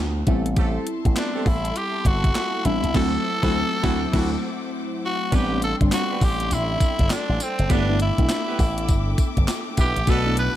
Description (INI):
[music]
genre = R&B, new jack swing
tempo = 101 BPM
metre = 4/4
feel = swing 63% on 16ths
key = A dorian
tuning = A4 = 440 Hz
[part]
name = FM electric piano with soft pad layer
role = accompaniment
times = 0.0-10.6 s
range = F#3 to F#4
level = -27 LUFS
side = left 2 dB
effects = chorus
[part]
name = slap bass with an envelope filter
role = bass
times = 0.0-10.5 s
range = F#1 to D2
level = -24 LUFS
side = equal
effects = none
[part]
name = warm horn section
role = stabs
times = 0.3-10.4 s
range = F#3 to B4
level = -32 LUFS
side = right 4 dB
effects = none
[part]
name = clean 12-bit digital drum machine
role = drums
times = 0.3-10.5 s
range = crash cymbal, handclaps, hi-hat, kick drum, snare drum, tambourine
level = -22 LUFS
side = equal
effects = overdrive, gated reverb
[part]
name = warm studio string section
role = sustained chords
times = 0.6-10.6 s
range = A4 to D6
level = -35 LUFS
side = left 3 dB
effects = none
[part]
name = breathy tenor saxophone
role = melody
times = 1.2-10.6 s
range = C4 to B4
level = -26 LUFS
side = equal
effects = none
[sound]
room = little or no reverb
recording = none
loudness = -19 LUFS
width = side -12 dB against mid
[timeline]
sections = 0.0-5.3 A section; 5.3-10.6 B section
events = band accent 2.9-5.3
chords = 0.3 Am7; 2.9 D9; 5.3 Am11; 7.7 G6